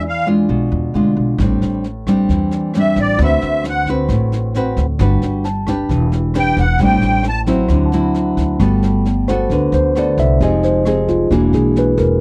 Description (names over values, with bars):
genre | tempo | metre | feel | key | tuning
bossa nova | 133 BPM | 4/4 | straight | G major | A4 = 439 Hz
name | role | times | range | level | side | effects
musette accordion | melody | 0.0-7.4 s | D5 to A5 | -20 LUFS | equal | none
nylon-string guitar | accompaniment | 0.0-12.2 s | A2 to B4 | -20 LUFS | equal | none
tine electric piano | accompaniment | 0.0-1.4, 5.4-12.2 s | Ab3 to B5 | -21 LUFS | equal | none
upright bass | bass | 0.0-12.2 s | E1 to E2 | -21 LUFS | equal | none
jazz brush drum kit | drums | 1.4-12.0 s | kick drum, rim click, snare drum | -28 LUFS | equal | none
room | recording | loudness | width
little or no reverb | dry, close 1970s-style studio recording | -16 LUFS | mono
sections
0.0-8.6 A section; 8.6-12.2 A section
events
accordion solo 0.0-8.6; tine electric piano solo 8.6-12.2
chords
0.0 E7b9; 1.4 Am7; 3.2 D13; 5.0 Gmaj7; 5.9 Em7; 6.8 Am7; 7.7 D9; 8.6 Gmaj9; 10.4 Fm7; 11.3 E7#11